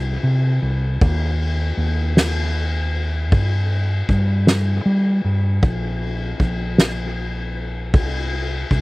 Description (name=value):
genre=indie folk with a building arrangement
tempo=52 BPM (dotted quarters)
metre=6/8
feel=straight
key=C minor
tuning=A4 = 440 Hz
part: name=fingered electric bass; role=bass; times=0.0-8.8 s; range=Bb1 to G3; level=-20 LUFS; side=equal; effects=none
part: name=soft-mallet drum kit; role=drums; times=0.2-8.8 s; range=kick drum, ride cymbal, snare drum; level=-21 LUFS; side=equal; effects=none
room=little or no reverb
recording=recorded outdoors, with no room sound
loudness=-17 LUFS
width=side -22 dB against mid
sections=0.0-8.8 A section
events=none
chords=none